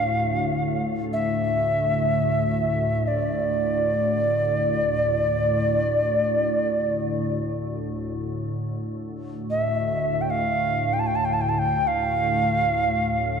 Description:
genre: world meditative, free-time meditation music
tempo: free time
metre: none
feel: none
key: D minor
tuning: A4 = 440 Hz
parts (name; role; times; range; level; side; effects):
- Native American-style cedar flute; melody; 0.0-13.4 s; D5 to A5; -23 LUFS; right 1 dB; diffuse ambient delay
- organ-like drone; drone; 0.0-13.4 s; D2 to A2; -26 LUFS; left 1 dB; ensemble chorus, built-in reverb
- crotales; texture; 0.0-5.3 s; none; barely audible; none; none
room: wet church reverb, RT60 3.6 s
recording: dark, warm production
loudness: -21 LUFS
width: side -6 dB against mid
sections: 0.0-8.0 A section; 8.0-13.4 A section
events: none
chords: none

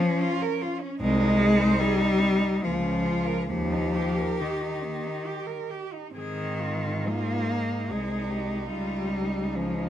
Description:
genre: classical, lyrical piece for cello ensemble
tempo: 62-76 BPM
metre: 3/4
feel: rubato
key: Ab major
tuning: A4 = 438 Hz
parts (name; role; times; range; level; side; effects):
- warm cello; melody; 0.0-9.9 s; Db4 to Ab4; -34 LUFS; left 4 dB; none
- warm cello; second line; 0.0-9.9 s; Bb3 to C5; -33 LUFS; right 6 dB; none
- rich cello; accompaniment; 0.0-9.9 s; Eb3 to Bb3; -26 LUFS; left 1 dB; none
- warm cello; bass; 1.0-9.9 s; C2 to Ab2; -31 LUFS; right 2 dB; none
room: light reverb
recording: close, detailed microphones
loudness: -24 LUFS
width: side -11 dB against mid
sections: 0.0-9.9 A section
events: none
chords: 0.0 Bbm; 1.0 Ab/C; 2.6 Bbm/Db; 3.5 Eb; 6.1 Ab; 8.7 Bbm/Db (rootless)

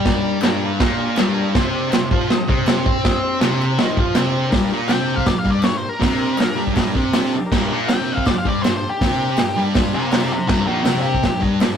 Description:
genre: garage rock duo or trio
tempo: 161 BPM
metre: 4/4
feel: straight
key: G minor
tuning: A4 = 442 Hz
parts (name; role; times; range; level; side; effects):
- overdriven combo organ; sustained chords; 0.0-11.8 s; C4 to Eb5; -29 LUFS; equal; none
- thick fuzz guitar; riff; 0.0-11.8 s; G2 to C5; -20 LUFS; equal; distortion
- vintage drum kit; drums; 0.1-11.7 s; crash cymbal, hi-hat, kick drum, snare drum; -19 LUFS; right 1 dB; none
- group handclap; percussion; 0.4-11.7 s; none; -34 LUFS; left 3 dB; none
- octave-fuzz lead guitar; melody; 4.9-11.4 s; D4 to G5; -23 LUFS; left 2 dB; distortion
room: light reverb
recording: rough rehearsal-room recording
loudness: -16 LUFS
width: side -8 dB against mid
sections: 0.0-4.5 A section; 4.5-11.8 B section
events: lead electric guitar solo 4.5-11.8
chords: 0.0 Gm; 1.5 C5; 4.5 Gm

